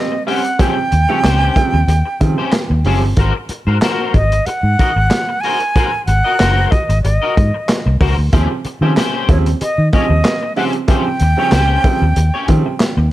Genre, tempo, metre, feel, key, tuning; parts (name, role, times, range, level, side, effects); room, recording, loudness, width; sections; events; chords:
funk; 93 BPM; 4/4; straight; Eb mixolydian; A4 = 440 Hz
breathy silver concert flute; melody; 0.0-13.1 s; Db5 to Ab5; -18 LUFS; right 1 dB
bright upright piano; stabs; 0.0-3.0, 8.3-12.9 s; Db3 to C4; -21 LUFS; right 5 dB
electric guitar at the edge of break-up; accompaniment; 0.1-13.0 s; Db4 to Eb5; -22 LUFS; left 4 dB; ensemble chorus
crunchy breakbeat drum kit; drums; 0.3-13.0 s; handclaps, hi-hat, kick drum, snare drum; -17 LUFS; equal
vintage muted fingered electric bass; bass; 0.9-13.1 s; Gb1 to Eb3; -14 LUFS; equal
light reverb, small room ambience; dark, warm production; -12 LUFS; side -15 dB against mid
0.0-13.1 A section
0.0 Eb13; 3.2 Ab9; 8.3 Eb13